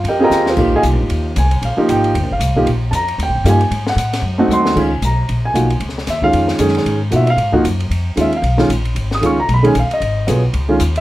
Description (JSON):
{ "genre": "modal jazz", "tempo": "229 BPM", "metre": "4/4", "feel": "swing 58% on 8ths", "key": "Db mixolydian from 4.8 s", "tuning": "A4 = 440 Hz", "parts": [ { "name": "warm grand piano", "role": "accompaniment", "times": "0.0-11.0 s", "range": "Eb3 to Eb6", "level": "-15 LUFS", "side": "right 1 dB", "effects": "none" }, { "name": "upright bass", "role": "bass", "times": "0.0-11.0 s", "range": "G1 to Cb3", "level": "-17 LUFS", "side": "equal", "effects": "none" }, { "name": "open jazz drum kit", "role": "drums", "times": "0.0-11.0 s", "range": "crash cymbal, hi-hat, kick drum, ride cymbal, snare drum, toms", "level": "-25 LUFS", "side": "left 2 dB", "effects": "none" } ], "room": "light reverb", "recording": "none", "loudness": "-13 LUFS", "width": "side -16 dB against mid", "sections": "0.0-4.8 A section; 4.8-11.0 A section", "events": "drum fill 0.3, 4.5", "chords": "0.0 Eb; 0.6 Bb9sus4; 2.7 Eb/Bb; 3.7 Ab7b9; 4.8 Db9", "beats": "0.05 0.31 | 0.57 0.83 1.09 1.36 | 1.62 1.88 2.14 2.40 | 2.67 2.93 3.19 3.45 | 3.71 3.97 4.24 4.50 | 4.76 5.02 5.28 5.54 | 5.81 6.07 6.33 6.59 | 6.85 7.12 7.38 7.64 | 7.91 8.17 8.43 8.69 | 8.96 9.22 9.48 9.74 | 10.01 10.27 10.53 10.80" }